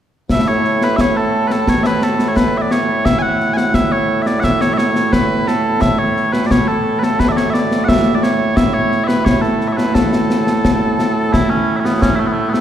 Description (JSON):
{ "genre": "scottish traditional, Scottish pipe music", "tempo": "87 BPM", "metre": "2/4", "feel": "straight", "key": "A major", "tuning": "A4 = 440 Hz", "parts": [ { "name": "mellow small bagpipes", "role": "melody", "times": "0.3-12.6 s", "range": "A2 to G#5", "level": "-15 LUFS", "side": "right 1 dB", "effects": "none" }, { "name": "concert snare drum and concert bass drum", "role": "drums", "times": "0.3-12.6 s", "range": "none", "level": "-17 LUFS", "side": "left 1 dB", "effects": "none" } ], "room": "wet concert hall reverb, RT60 2.3 s", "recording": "heard from further back in the room", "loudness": "-13 LUFS", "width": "side -10 dB against mid", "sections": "0.3-11.3 A section; 11.3-12.6 A section", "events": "none", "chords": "none" }